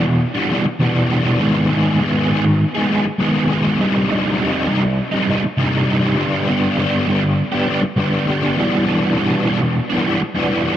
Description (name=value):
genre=rock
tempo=101 BPM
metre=4/4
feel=straight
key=unclear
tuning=A4 = 439 Hz
part: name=crunchy overdriven guitar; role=solo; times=0.0-10.8 s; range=C2 to Ab4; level=-15 LUFS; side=equal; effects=rotary speaker, tape echo
room=light reverb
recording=echo-heavy mix, nothing above 10.6 kHz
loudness=-15 LUFS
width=side -11 dB against mid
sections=0.0-10.8 A section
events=none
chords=0.0 Em7; 1.4 Abm; 3.8 Cm; 6.2 G; 8.6 Em7